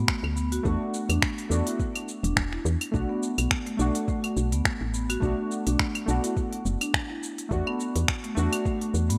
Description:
organic downtempo; 105 BPM; 4/4; swing 55% on 16ths; B minor; A4 = 441 Hz
deep mellow chord stab; accompaniment; 0.0-9.2 s; A3 to F#4; -35 LUFS; equal; chorus, sidechain pumping, digital delay
marimba with medium mallets; arpeggios; 0.0-9.2 s; A3 to F#4; -33 LUFS; equal; digital delay
woody FM bass; bass; 0.0-9.2 s; E1 to A2; -29 LUFS; equal; sidechain pumping
electronic kick drum; drums; 0.1-8.8 s; -32 LUFS; equal
organic electronic drum kit; drums; 0.1-9.2 s; claves, finger snaps, hi-hat, shaker; -31 LUFS; equal
light reverb; bright 1980s-style digital production; -27 LUFS; mono
0.0-9.2 A section
0.0 E7sus4; 2.9 Bm7; 7.5 E7sus4

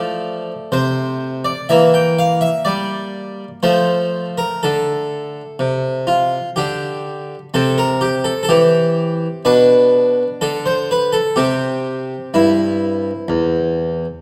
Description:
classical, baroque-style suite movement for harpsichord; 62 BPM; 4/4; rubato; F major; A4 = 440 Hz
harpsichord; solo; 0.0-14.2 s; E2 to G5; -17 LUFS; equal
moderate recital hall reverb, RT60 1.4 s; -17 LUFS; mono
0.0-14.2 A section
0.0 F; 1.7 Em7b5; 3.6 F; 7.5 C; 9.5 Bm7; 11.4 C

